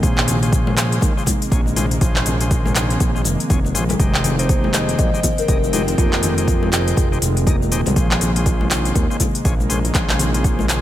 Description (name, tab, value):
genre	afro house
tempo	121 BPM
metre	4/4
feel	swing 60% on 16ths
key	unclear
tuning	A4 = 440 Hz
part	warm analog pad	sustained chords	0.0-10.8 s	F3 to G5	-31 LUFS	right 1 dB	chorus, tremolo, sidechain pumping
part	marimba with medium mallets	arpeggios	0.0-10.8 s	C3 to Eb4	-25 LUFS	equal	vintage 12-bit sampler grit, sidechain pumping, ping-pong delay
part	overdriven tonewheel organ	stabs	0.0-10.8 s	Db4 to G5	-28 LUFS	left 3 dB	sidechain pumping, ping-pong delay
part	smooth synth bass	bass	0.0-10.8 s	Eb1 to Eb2	-21 LUFS	equal	sidechain pumping
part	afro-pop drum kit	drums	0.0-10.8 s	handclaps, hi-hat, shaker	-23 LUFS	left 1 dB	none
part	electronic kick drum	drums	0.0-10.6 s	none	-18 LUFS	equal	overdrive
part	congas	percussion	0.2-10.8 s	none	-27 LUFS	left 2 dB	none
part	kalimba	melody	4.4-7.1 s	F4 to Eb5	-26 LUFS	equal	ping-pong delay
room	little or no reverb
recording	none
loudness	-15 LUFS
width	side -13 dB against mid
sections	0.0-10.8 A section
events	none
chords	0.0 Bbm7; 4.0 Fm7; 8.0 Bbm7